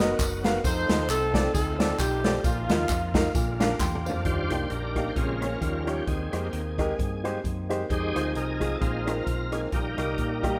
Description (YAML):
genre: uptempo gospel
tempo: 132 BPM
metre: 4/4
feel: swing 56% on 8ths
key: Eb major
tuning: A4 = 438 Hz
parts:
  - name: clear horn section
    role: melody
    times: 0.0-3.3 s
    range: Bb3 to C5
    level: -31 LUFS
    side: equal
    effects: slapback echo
  - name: warm upright piano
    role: accompaniment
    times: 0.0-10.6 s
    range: Bb2 to C6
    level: -33 LUFS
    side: equal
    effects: none
  - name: bright tonewheel organ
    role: sustained chords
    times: 0.0-10.6 s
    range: Db3 to C5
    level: -36 LUFS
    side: equal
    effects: slow rotary speaker, overdrive, chorus vibrato
  - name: vintage muted fingered electric bass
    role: bass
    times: 0.0-10.6 s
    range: F#1 to Bb2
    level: -34 LUFS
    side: equal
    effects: none
  - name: swinging big-band drum kit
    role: drums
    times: 0.0-10.5 s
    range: hi-hat, kick drum, rim click, snare drum, toms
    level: -31 LUFS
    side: equal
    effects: none
  - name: tambourine and handclaps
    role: percussion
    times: 0.0-4.2 s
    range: none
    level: -40 LUFS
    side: equal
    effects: none
  - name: dark French horn section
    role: sustained chords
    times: 4.3-10.6 s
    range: Db3 to Eb4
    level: -39 LUFS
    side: equal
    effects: none
room: moderate lush hall reverb, RT60 2.1 s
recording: rough home demo mix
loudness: -27 LUFS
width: mono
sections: 0.0-4.3 A section; 4.3-10.6 B section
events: drum fill 3.8-4.3; tonewheel organ solo 4.3-10.6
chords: 0.0 Bmaj7; 0.6 F7; 2.4 Bbsus4; 3.3 Bb; 4.3 Ebmaj7; 5.2 Bbm7; 5.6 Eb9; 6.1 Abmaj7/Eb; 7.9 Fm7; 8.8 Bb9sus4; 9.7 Eb/Bb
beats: 0.19 | 0.64 1.09 1.54 1.99 | 2.44 2.90 3.35 3.80 | 4.25 4.71 5.16 5.62 | 6.07 6.53 6.99 7.44 | 7.90 8.36 8.81 9.27 | 9.73 10.18